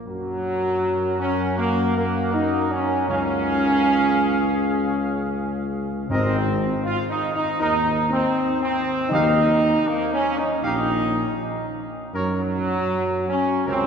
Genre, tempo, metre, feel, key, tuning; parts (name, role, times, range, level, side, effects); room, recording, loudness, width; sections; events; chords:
classical; 79 BPM; 4/4; straight; Ab major; A4 = 441 Hz
mellow trumpet section; melody; 0.1-13.9 s; G4 to Gb5; -30 LUFS; right 1 dB
bright trombone section; sustained chords; 0.1-13.9 s; Gb3 to F4; -23 LUFS; right 2 dB
mellow French horn section; sustained chords; 0.1-13.9 s; C3 to F4; -26 LUFS; left 3 dB
dark tuba; bass; 0.1-13.9 s; Ab1 to Gb2; -26 LUFS; equal
timpani; percussion; 6.1-10.2 s; Ab2 to Eb3; -31 LUFS; left 1 dB
wet cathedral reverb, RT60 4.9 s; heard from further back in the room; -20 LUFS; side -6 dB against mid
0.0-13.9 A section
0.1 Gb; 3.1 Db; 6.1 Ab; 9.1 Eb5; 12.1 Gb